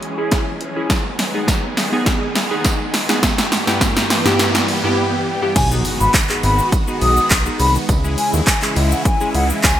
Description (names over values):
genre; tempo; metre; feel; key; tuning
dance-pop; 103 BPM; 4/4; straight; B major; A4 = 440 Hz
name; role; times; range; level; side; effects
supersaw chords; sustained chords; 0.0-9.8 s; G2 to G#4; -24 LUFS; equal; phaser, sidechain pumping, low-pass filter
punchy analog drum machine; drums; 0.0-9.8 s; crash cymbal, handclaps, hi-hat, kick drum, shaker, snare drum; -17 LUFS; equal; gated reverb
riser and impact; sound effects; 0.1-7.9 s; none; -27 LUFS; right 2 dB; none
glassy digital keys; accompaniment; 0.2-9.5 s; G2 to B5; -22 LUFS; equal; chorus, sidechain pumping, low-pass filter
tambourine; percussion; 0.9-9.8 s; none; -32 LUFS; right 5 dB; none
mellow hollow silver concert flute; melody; 5.6-9.8 s; F#5 to D#6; -20 LUFS; left 1 dB; sidechain pumping, digital delay
fat analog bass; bass; 5.6-9.8 s; G#1 to D#2; -18 LUFS; equal; sidechain pumping
room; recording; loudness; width
moderate plate reverb, RT60 1.9 s, digital ambience; bright 1980s-style digital production; -14 LUFS; side -11 dB against mid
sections
0.0-5.6 A section; 5.6-9.8 B section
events
build-up 0.0-5.6; drum fill 0.0-5.0; riser 0.1-5.6; synth keys fill 4.4-5.6; break 5.0-5.6; drop 5.6-9.8; impact 5.6-7.9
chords
0.0 C#m; 0.9 G#m; 3.2 Em/G; 5.6 B6; 7.9 C#m